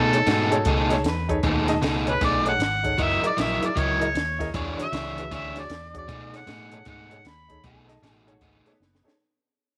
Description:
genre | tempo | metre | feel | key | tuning
electric blues shuffle | 155 BPM | 4/4 | swing 64% on 8ths | B mixolydian | A4 = 440 Hz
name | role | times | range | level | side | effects
mellow harmonica | melody | 0.0-7.6 s | A4 to B5 | -29 LUFS | equal | overdrive
overdriven semi-hollow guitar | riff | 0.0-8.7 s | B2 to D#5 | -29 LUFS | equal | none
vintage muted fingered electric bass | bass | 0.0-9.1 s | F#1 to B2 | -32 LUFS | equal | none
warm grand piano | accompaniment | 0.1-9.1 s | D4 to E5 | -33 LUFS | equal | none
compact cocktail drum kit | drums | 0.1-9.2 s | hi-hat, kick drum, snare drum | -32 LUFS | equal | none
electric guitar through a small old amp | second line | 0.3-1.9, 7.7-9.1 s | B3 to B4 | -36 LUFS | equal | none
room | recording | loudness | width
light reverb, studio reverb | none | -24 LUFS | mono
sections
0.0-9.2 A section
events
fade-out 0.0-9.2; drum fill 8.8-9.2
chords
0.0 B13; 3.0 F#13; 4.5 E13; 6.1 B13

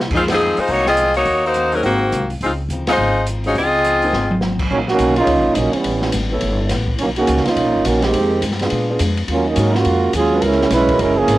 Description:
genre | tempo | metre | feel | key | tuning
jazz, big band swing | 209 BPM | 4/4 | swing 62% on 8ths | Db major, F# major from 4.7 s | A4 = 440 Hz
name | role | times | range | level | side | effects
picked steel-string acoustic guitar | accompaniment | 0.0-11.4 s | F2 to G4 | -29 LUFS | left 3 dB | none
upright bass | bass | 0.0-11.4 s | F#1 to A#2 | -22 LUFS | equal | none
open jazz drum kit | drums | 0.0-11.4 s | crash cymbal, hi-hat, kick drum, ride cymbal, snare drum, toms | -24 LUFS | equal | cassette tape
edgy saxophone section | melody | 0.1-4.4 s | Eb3 to Eb5 | -15 LUFS | left 1 dB | cassette tape
warm concert grand piano | accompaniment | 0.1-11.0 s | F3 to Eb5 | -23 LUFS | right 1 dB | cassette tape
warm trombone section | second line | 4.7-11.4 s | C#3 to B4 | -15 LUFS | right 2 dB | cassette tape
room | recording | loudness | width
moderate studio reverb, RT60 0.5 s | home recording on cassette | -14 LUFS | side -16 dB against mid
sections
0.0-4.7 A section; 4.7-11.4 B section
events
band accent 0.3, 2.8; drum fill 4.1; trombone section solo 4.7-11.4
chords
0.1 Fm7; 1.3 Ebm7; 1.8 Ab13; 2.4 Dbmaj9; 4.7 F#6; 5.8 A9; 7.0 Bmaj9#11; 8.1 Fm9; 8.7 A#7b9; 9.3 D#m11; 10.4 C#m7

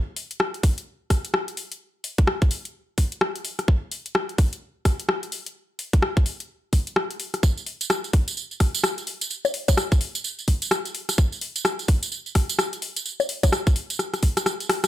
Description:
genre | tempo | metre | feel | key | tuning
UK garage | 128 BPM | 4/4 | swing 61% on 16ths | none | none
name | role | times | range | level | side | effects
garage drum kit | drums | 0.2-14.9 s | bongos, hi-hat, rim click, tambourine | -25 LUFS | left 1 dB | studio reverb
electronic kick drum | drums | 0.6-14.3 s | none | -19 LUFS | equal | studio reverb
room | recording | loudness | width
digital ambience | none | -22 LUFS | side -13 dB against mid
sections
0.0-14.9 A section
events
drum fill 14.0-14.9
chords
none

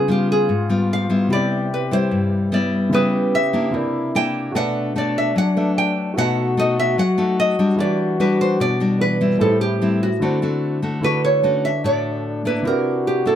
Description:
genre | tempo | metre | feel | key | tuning
bossa nova | 148 BPM | 4/4 | straight | unclear | A4 = 441 Hz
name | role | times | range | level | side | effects
nylon-string guitar | melody | 0.0-13.4 s | F#4 to G5 | -21 LUFS | right 2 dB | none
breathy trombone | second line | 0.0-13.4 s | D4 to G4 | -26 LUFS | left 3 dB | none
nylon-string guitar | accompaniment | 0.0-13.4 s | G2 to F#4 | -20 LUFS | left 2 dB | none
warm grand piano | accompaniment | 0.0-13.4 s | C3 to Eb6 | -27 LUFS | right 1 dB | none
room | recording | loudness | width
light reverb | close, detailed microphones | -17 LUFS | side -10 dB against mid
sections
0.0-11.0 A section; 11.0-13.4 B section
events
none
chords
0.0 C#7#11; 1.3 Cmaj7; 2.9 C#m7b5; 3.7 C9; 4.5 Bm7; 6.2 B7; 7.8 Em9; 9.4 Am7; 10.2 D7; 11.0 Dmaj7; 12.7 C9

